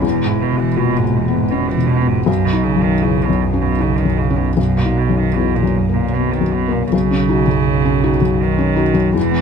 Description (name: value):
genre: neoclassical piano and strings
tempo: 79 BPM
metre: 3/4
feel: uneven beats, rubato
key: B major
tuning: A4 = 445 Hz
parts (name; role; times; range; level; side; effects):
- rich cello; second line; 0.0-9.4 s; E2 to E3; -19 LUFS; right 9 dB; none
- felt-muted upright piano; accompaniment; 0.0-9.4 s; B1 to F#4; -17 LUFS; left 4 dB; none
- warm double bass; bass; 0.0-9.4 s; E1 to B1; -21 LUFS; right 1 dB; none
room: light reverb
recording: none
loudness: -14 LUFS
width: side -6 dB against mid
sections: 0.0-6.9 A section; 6.9-9.4 B section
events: none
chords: 0.0 E; 2.3 Badd9; 4.6 Bmaj7; 6.9 Badd9